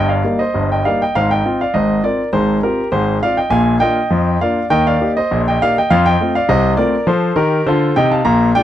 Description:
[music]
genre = ragtime piano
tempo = 101 BPM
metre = 2/4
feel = straight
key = unclear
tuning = A4 = 440 Hz
[part]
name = warm concert grand piano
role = solo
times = 0.0-8.6 s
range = G1 to Bb5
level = -13 LUFS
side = equal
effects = none
[sound]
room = little or no reverb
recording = dry, close 1970s-style studio recording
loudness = -13 LUFS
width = side -11 dB against mid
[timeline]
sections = 0.0-8.6 A section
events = none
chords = 0.0 Eb/G; 1.2 Fm/Ab; 3.5 Bb; 4.7 Eb; 5.9 F7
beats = 0.56 | 1.16 1.75 | 2.34 2.93 | 3.52 4.11 | 4.70 5.29 | 5.89 6.48 | 7.07 7.66 | 8.25

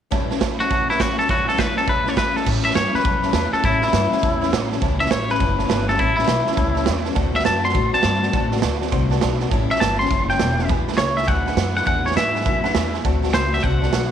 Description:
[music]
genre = rockabilly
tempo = 204 BPM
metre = 4/4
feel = swing 64% on 8ths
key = A mixolydian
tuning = A4 = 440 Hz
[part]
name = picked steel-string acoustic guitar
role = accompaniment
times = 0.1-14.1 s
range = E2 to F#4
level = -27 LUFS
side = left 13 dB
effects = none
[part]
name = tack piano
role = accompaniment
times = 0.1-14.0 s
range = B4 to C6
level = -30 LUFS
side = right 13 dB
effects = none
[part]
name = raw garage drum kit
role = drums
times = 0.1-14.0 s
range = crash cymbal, hi-hat, kick drum, snare drum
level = -22 LUFS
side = right 3 dB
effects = none
[part]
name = twangy electric guitar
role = melody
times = 0.6-14.1 s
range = E4 to C6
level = -21 LUFS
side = left 2 dB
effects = spring reverb, tape echo
[part]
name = upright bass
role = bass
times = 2.5-14.1 s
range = E1 to A2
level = -24 LUFS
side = left 1 dB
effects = none
[sound]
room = small room ambience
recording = 1960s-style stereo with parts hard left and right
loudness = -17 LUFS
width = side -9 dB against mid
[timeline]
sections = 0.1-2.5 A section; 2.5-14.1 B section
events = honky-tonk piano fill 9.1-9.5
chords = 0.1 A7; 7.2 D7; 9.5 A7; 10.7 E7; 13.0 D7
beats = | 0.12 0.41 0.70 1.00 | 1.29 1.58 1.88 2.17 | 2.47 2.76 3.05 3.35 | 3.64 3.93 4.23 4.52 | 4.82 5.11 5.40 5.70 | 5.99 6.28 6.58 6.87 | 7.17 7.46 7.75 8.05 | 8.34 8.63 8.93 9.22 | 9.52 9.81 10.11 10.40 | 10.69 10.99 11.28 11.58 | 11.87 12.16 12.46 12.75 | 13.05 13.34 13.64 13.93

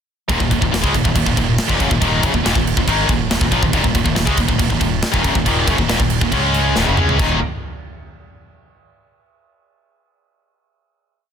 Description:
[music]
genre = heavy metal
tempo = 139 BPM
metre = 4/4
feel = straight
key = Eb minor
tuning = A4 = 439 Hz
[part]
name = scooped high-gain guitar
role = riff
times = 0.3-7.4 s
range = Eb2 to Db4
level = -21 LUFS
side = right 9 dB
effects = distortion
[part]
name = tight distorted guitar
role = riff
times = 0.3-7.4 s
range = Eb2 to Db4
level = -21 LUFS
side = left 11 dB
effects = distortion
[part]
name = tight distorted guitar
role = riff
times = 0.3-7.4 s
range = Eb2 to Eb4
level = -23 LUFS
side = left 1 dB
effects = distortion
[part]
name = fuzz fingered electric bass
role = bass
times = 0.3-7.4 s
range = Eb1 to Db2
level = -22 LUFS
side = equal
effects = overdrive
[part]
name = tight metal drum kit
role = drums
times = 0.3-7.3 s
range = crash cymbal, kick drum, snare drum, toms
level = -19 LUFS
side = equal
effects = none
[sound]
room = studio reverb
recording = dense, heavily limited modern master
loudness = -14 LUFS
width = side -8 dB against mid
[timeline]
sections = 0.3-7.2 riff; 7.2-8.9 final chord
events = drum fill 6.8-7.2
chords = 0.3 Ebm; 6.3 Db5; 6.8 Ebm; 7.2 Eb5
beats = | 0.30 0.73 1.16 1.59 | 2.02 2.45 2.88 3.31 | 3.74 4.17 4.61 5.04 | 5.47 5.90 6.33 6.76 | 7.20

